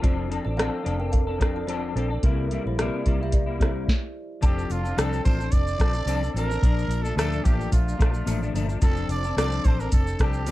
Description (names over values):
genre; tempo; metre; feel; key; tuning
indie pop, bedroom pop; 109 BPM; 4/4; swing 55% on 16ths; F major; A4 = 444 Hz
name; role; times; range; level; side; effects
kalimba; second line; 0.0-3.8 s; C4 to G5; -34 LUFS; right 4 dB; wide subtle chorus, plate reverb, tape echo
semi-hollow electric guitar; accompaniment; 0.0-10.5 s; Bb2 to A4; -29 LUFS; left 4 dB; ensemble chorus, vibrato effect, plate reverb
vintage muted fingered electric bass; bass; 0.0-10.5 s; F1 to D2; -28 LUFS; equal; none
soft vintage rhythm box; drums; 0.0-10.5 s; hi-hat, kick drum, rim click, shaker, snare drum; -22 LUFS; equal; none
growling trumpet; melody; 4.4-10.5 s; F4 to D5; -31 LUFS; right 3 dB; lush chorus, plate reverb
tambourine; percussion; 4.4-10.5 s; none; -50 LUFS; right 16 dB; none
room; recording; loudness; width
little or no reverb; dark, warm production; -22 LUFS; side -16 dB against mid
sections
0.0-4.4 A section; 4.4-10.5 B section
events
stop 3.9-4.4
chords
0.0 F6; 2.2 C7; 4.4 F6; 6.6 Bbmaj7; 8.8 F6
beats
| 0.03 0.58 1.13 1.68 | 2.23 2.78 3.33 3.88 | 4.43 4.98 5.53 6.08 | 6.63 7.17 7.72 8.28 | 8.82 9.38 9.93 10.48